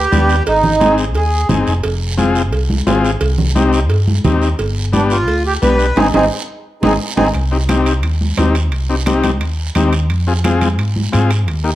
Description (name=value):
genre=latin, cumbia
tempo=174 BPM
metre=4/4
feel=straight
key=C minor from 7.3 s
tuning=A4 = 439 Hz
part: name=accordion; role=melody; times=0.0-1.5, 4.9-7.3 s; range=C4 to B4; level=-16 LUFS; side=right 2 dB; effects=plate reverb
part: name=hollow-body short-scale fingered electric bass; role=bass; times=0.0-11.8 s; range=F1 to Ab2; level=-16 LUFS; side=equal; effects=none
part: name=overdriven combo organ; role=accompaniment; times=0.1-11.7 s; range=Bb3 to Ab4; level=-17 LUFS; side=left 4 dB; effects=none
part: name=congas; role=percussion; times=0.1-11.7 s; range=none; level=-19 LUFS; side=right 1 dB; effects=none
part: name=guiro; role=percussion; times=0.1-11.8 s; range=none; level=-29 LUFS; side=right 6 dB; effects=none
part: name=cowbell and timbales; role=percussion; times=0.5-11.7 s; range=none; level=-24 LUFS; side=right 5 dB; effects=none
room=moderate large studio reverb, RT60 0.8 s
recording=dark, warm production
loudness=-12 LUFS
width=side -14 dB against mid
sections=0.0-7.3 A section; 7.3-11.8 B section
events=band accent 6.0-7.3; transistor combo organ fill 6.3-7.3; drum fill 6.5-7.3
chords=0.5 Ab; 1.8 Fm; 3.2 Cm; 4.6 G; 6.0 Ab; 7.3 Cm; 10.1 Fm